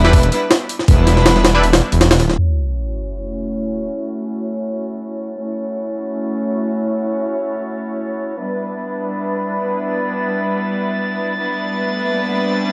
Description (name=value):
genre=drum and bass, jungle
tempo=free time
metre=none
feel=none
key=F# phrygian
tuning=A4 = 440 Hz
part: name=rich chamber string section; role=sustained chords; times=0.0-12.7 s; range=G3 to C#5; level=-23 LUFS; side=equal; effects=vintage 12-bit sampler grit
part: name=band-passed chord stab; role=stabs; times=0.0-1.6 s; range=G3 to B4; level=-23 LUFS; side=equal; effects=chorus, dub echo
part: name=detuned saw bass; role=bass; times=0.0-2.4 s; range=D1 to E1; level=-16 LUFS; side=equal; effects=none
part: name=jungle sampler-style drum kit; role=drums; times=0.0-2.4 s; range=hi-hat, kick drum, snare drum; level=-16 LUFS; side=equal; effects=overdrive
part: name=sub drop and riser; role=sound effects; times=2.4-3.9, 11.9-12.7 s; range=none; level=-25 LUFS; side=equal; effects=none
part: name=drifting glass-harmonics texture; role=texture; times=5.9-12.7 s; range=A6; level=-30 LUFS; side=equal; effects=chorus, built-in reverb
room=light reverb, digital ambience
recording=vinyl crackle, low-pass filter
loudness=-18 LUFS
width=mono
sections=0.0-2.4 A section; 2.4-12.7 B section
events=drop 0.0-2.4; impact 2.4-3.9; filter sweep 2.4-12.7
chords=0.0 Em7; 2.4 F#m7; 8.4 Em7